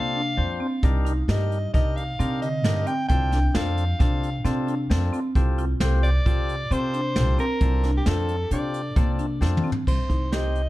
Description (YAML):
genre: progressive instrumental, band music in an uneven meter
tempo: 133 BPM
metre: 5/4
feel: straight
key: C dorian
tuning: A4 = 441 Hz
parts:
  - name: clear soprano saxophone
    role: melody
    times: 0.0-10.7 s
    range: G4 to G5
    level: -29 LUFS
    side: equal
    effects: digital delay
  - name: percussive tonewheel organ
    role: accompaniment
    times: 0.0-10.6 s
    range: C4 to C5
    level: -32 LUFS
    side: left 4 dB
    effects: overdrive
  - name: marimba with medium mallets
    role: arpeggios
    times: 0.0-10.6 s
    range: D3 to A4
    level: -30 LUFS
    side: equal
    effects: digital delay
  - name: upright bass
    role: bass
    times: 0.0-10.7 s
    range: C2 to C3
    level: -24 LUFS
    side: equal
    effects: none
  - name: jazz brush drum kit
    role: drums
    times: 0.8-10.7 s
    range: crash cymbal, hi-hat, kick drum, snare drum, toms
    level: -24 LUFS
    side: equal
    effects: none
room: light reverb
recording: dark, warm production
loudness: -21 LUFS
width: side -17 dB against mid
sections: 0.0-9.9 A section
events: drum fill 9.4-9.9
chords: 0.0 Bbmaj7/C (rootless); 0.8 Cm7; 3.1 F69/C; 5.4 Fadd9/C; 7.6 Bbmaj7/C (rootless); 9.9 Cm